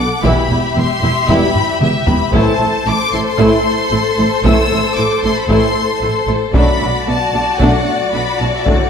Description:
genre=cinematic, epic orchestral film score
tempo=114 BPM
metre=4/4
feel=straight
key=unclear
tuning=A4 = 439 Hz
part: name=warm symphonic violin section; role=melody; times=0.0-8.9 s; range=E5 to E6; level=-19 LUFS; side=left 3 dB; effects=none
part: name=warm symphonic violin section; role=second line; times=0.0-8.9 s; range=F#4 to F#5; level=-18 LUFS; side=left 3 dB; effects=none
part: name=dark symphonic viola section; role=accompaniment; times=0.0-8.9 s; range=A3 to E4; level=-20 LUFS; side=right 1 dB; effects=none
part: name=dark symphonic cello section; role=bass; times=0.0-8.7 s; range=E2 to D3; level=-21 LUFS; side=right 3 dB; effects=none
part: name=rich symphonic double bass section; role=bass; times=0.0-8.7 s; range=E1 to D2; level=-21 LUFS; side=right 2 dB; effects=none
part: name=dark trombone section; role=sustained chords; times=0.2-8.9 s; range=F#2 to F#3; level=-25 LUFS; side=right 2 dB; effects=none
part: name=warm French horn section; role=sustained chords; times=0.2-8.8 s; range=G3 to E4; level=-23 LUFS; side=left 3 dB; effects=none
part: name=taiko ensemble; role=drums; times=0.2-8.9 s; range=none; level=-18 LUFS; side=equal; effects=none
room=wet recital hall reverb, RT60 1.5 s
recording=none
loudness=-12 LUFS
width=side -7 dB against mid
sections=0.0-8.9 A section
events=drum fill 1.6-2.3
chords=0.2 Em; 2.3 Am; 6.5 Bm7

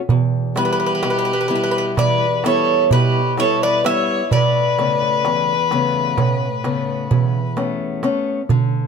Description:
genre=greek folk, Greek bouzouki band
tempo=128 BPM (eighths)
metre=9/8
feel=straight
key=unclear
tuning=A4 = 439 Hz
part: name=picked acoustic archtop guitar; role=accompaniment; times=0.1-8.9 s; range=E2 to E4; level=-22 LUFS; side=left 4 dB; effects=none
part: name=darbuka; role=percussion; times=0.1-8.7 s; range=none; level=-19 LUFS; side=right 6 dB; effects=none
part: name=Greek bouzouki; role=melody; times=0.6-7.5 s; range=B4 to E5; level=-19 LUFS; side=right 1 dB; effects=tape echo
part: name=warm violin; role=second line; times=0.6-7.5 s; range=G4 to C#5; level=-21 LUFS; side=left 3 dB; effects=none
room=light reverb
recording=none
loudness=-16 LUFS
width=side -6 dB against mid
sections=0.0-8.5 A section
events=none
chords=0.1 Em; 4.3 Aadd9

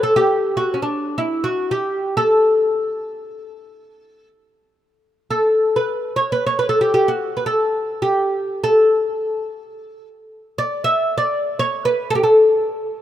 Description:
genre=Arabic maqam ensemble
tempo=free time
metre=none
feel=none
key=unclear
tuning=A4 = 438 Hz
part: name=oud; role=solo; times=0.0-13.0 s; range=C#4 to E5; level=-16 LUFS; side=equal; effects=none
room=moderate lush hall reverb, RT60 2.7 s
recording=rough home demo mix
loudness=-16 LUFS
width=side -11 dB against mid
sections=0.0-13.0 A section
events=none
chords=none

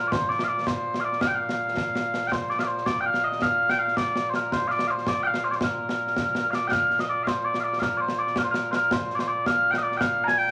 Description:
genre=scottish traditional, Scottish pipe music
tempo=109 BPM (dotted quarters)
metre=6/8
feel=straight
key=Bb major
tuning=A4 = 440 Hz
part: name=mellow small bagpipes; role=melody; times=0.0-10.5 s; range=Bb2 to Bb5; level=-26 LUFS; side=equal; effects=none
part: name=concert snare drum and concert bass drum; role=drums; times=0.1-10.5 s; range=none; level=-33 LUFS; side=equal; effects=none
room=wet large studio reverb, RT60 1.2 s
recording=vinyl crackle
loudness=-25 LUFS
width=mono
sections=0.0-6.7 A section; 6.7-10.5 B section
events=none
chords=none

